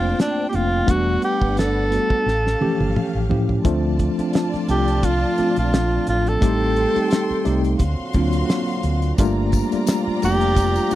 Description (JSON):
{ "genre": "lush 1970s-style soul", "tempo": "87 BPM", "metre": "4/4", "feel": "swing 54% on 16ths", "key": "D phrygian", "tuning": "A4 = 440 Hz", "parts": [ { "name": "breathy tenor saxophone", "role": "melody", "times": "0.0-11.0 s", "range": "D4 to A4", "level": "-22 LUFS", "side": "right 1 dB", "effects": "none" }, { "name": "warm studio string section", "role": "second line", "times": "0.0-11.0 s", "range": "C#4 to C6", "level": "-29 LUFS", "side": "right 2 dB", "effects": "none" }, { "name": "mellow tine electric piano", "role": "accompaniment", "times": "0.0-11.0 s", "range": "E3 to F#5", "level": "-22 LUFS", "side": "left 1 dB", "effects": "medium stereo tremolo" }, { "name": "fingered electric bass", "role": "bass", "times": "0.0-10.9 s", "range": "E1 to A2", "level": "-22 LUFS", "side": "equal", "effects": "none" }, { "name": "cloth-damped thuddy drum kit", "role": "drums", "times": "0.2-11.0 s", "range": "hi-hat, kick drum, snare drum, toms", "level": "-21 LUFS", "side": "equal", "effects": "none" }, { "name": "mellow French horn section", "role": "sustained chords", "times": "3.6-11.0 s", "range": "A#2 to G4", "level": "-31 LUFS", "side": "right 2 dB", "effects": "none" }, { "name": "tambourine", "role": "percussion", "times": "9.2-11.0 s", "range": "none", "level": "-37 LUFS", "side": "left 12 dB", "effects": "none" } ], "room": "little or no reverb", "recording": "dry, close 1970s-style studio recording", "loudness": "-17 LUFS", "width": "side -14 dB against mid", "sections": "0.0-3.7 A section; 3.7-11.0 B section", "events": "drum fill 2.3-3.7", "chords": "0.0 Gm11; 0.9 Em11; 2.3 A7b13; 3.7 Dm7; 6.4 Am7b5; 7.8 D7alt; 9.2 Gm9" }